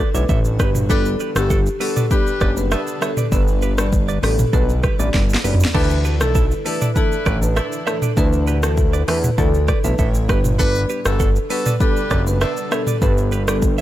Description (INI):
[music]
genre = afrobeats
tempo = 99 BPM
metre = 4/4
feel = straight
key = unclear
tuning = A4 = 440 Hz
[part]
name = granular cloud pad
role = sustained chords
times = 0.1-13.8 s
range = A2 to C#5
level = -32 LUFS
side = left 1 dB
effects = built-in reverb
[part]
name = direct-recorded clean electric guitar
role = riff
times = 0.0-13.8 s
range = D4 to E5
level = -29 LUFS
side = right 9 dB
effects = digital delay
[part]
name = fat analog bass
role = bass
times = 0.0-13.8 s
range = F#1 to E2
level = -19 LUFS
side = equal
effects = none
[part]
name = soft electric-piano-like synth keys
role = accompaniment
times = 0.1-13.7 s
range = E3 to D5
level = -27 LUFS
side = left 5 dB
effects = chorus
[part]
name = afro-pop drum kit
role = drums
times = 0.1-13.8 s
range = crash cymbal, hi-hat, kick drum, rim click, shaker, snare drum, toms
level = -19 LUFS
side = equal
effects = none
[part]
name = marimba with medium mallets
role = melody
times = 0.2-13.6 s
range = G4 to D5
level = -24 LUFS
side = right 1 dB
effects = digital delay
[part]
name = warm horn section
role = second line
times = 0.9-12.8 s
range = B3 to B4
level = -27 LUFS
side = left 2 dB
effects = none
[sound]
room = little or no reverb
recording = none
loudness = -16 LUFS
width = side -13 dB against mid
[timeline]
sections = 0.0-13.8 A section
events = drum fill 5.1-5.7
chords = 0.0 Dsus2; 0.6 G; 5.7 Dsus2; 10.3 G